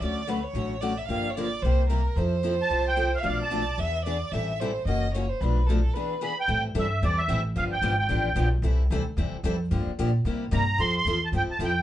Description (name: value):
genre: acoustic string swing (jazz manouche)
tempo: 223 BPM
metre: 4/4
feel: swing 56% on 8ths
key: A minor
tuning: A4 = 439 Hz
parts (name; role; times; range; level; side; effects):
- warm violin; second line; 0.0-6.4 s; A4 to F5; -31 LUFS; right 3 dB; none
- picked steel-string acoustic guitar; accompaniment; 0.0-11.7 s; B2 to A4; -30 LUFS; left 3 dB; none
- upright bass; bass; 0.0-11.8 s; F#1 to C3; -26 LUFS; equal; none
- musette accordion; melody; 2.6-3.8, 6.2-8.5, 10.5-11.8 s; D5 to C6; -26 LUFS; right 2 dB; none
room: moderate studio ambience, RT60 0.4 s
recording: band playing live in one room, nothing above 10.5 kHz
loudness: -23 LUFS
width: side -13 dB against mid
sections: 0.0-6.5 A section; 6.5-11.8 B section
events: break 5.9-6.5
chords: 0.0 Dmaj7; 1.1 Gm7; 1.6 C7; 2.2 Fmaj7; 3.2 Bm7b5; 3.8 E7; 4.3 Am7; 4.9 F#7; 5.4 Bm7b5; 5.9 E7; 6.5 Am7; 7.6 G7; 8.6 C69; 9.7 Gm7; 10.3 C7; 10.8 Fmaj9